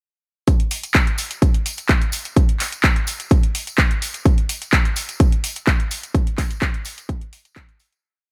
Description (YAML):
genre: house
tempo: 127 BPM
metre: 4/4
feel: straight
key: none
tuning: none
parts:
  - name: electronic kick drum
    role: drums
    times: 0.5-7.7 s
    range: none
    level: -19 LUFS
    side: equal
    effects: none
  - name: punchy analog drum machine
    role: drums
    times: 0.5-8.0 s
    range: handclaps, hi-hat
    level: -25 LUFS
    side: equal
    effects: sidechain pumping on hats
  - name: tambourine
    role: percussion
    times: 0.5-8.0 s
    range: none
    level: -35 LUFS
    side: equal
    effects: sidechain pumping on perc
room: digital ambience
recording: none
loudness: -20 LUFS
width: mono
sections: 0.5-8.0 drop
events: drop 0.5-8.0; fade-out 5.5-8.0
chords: none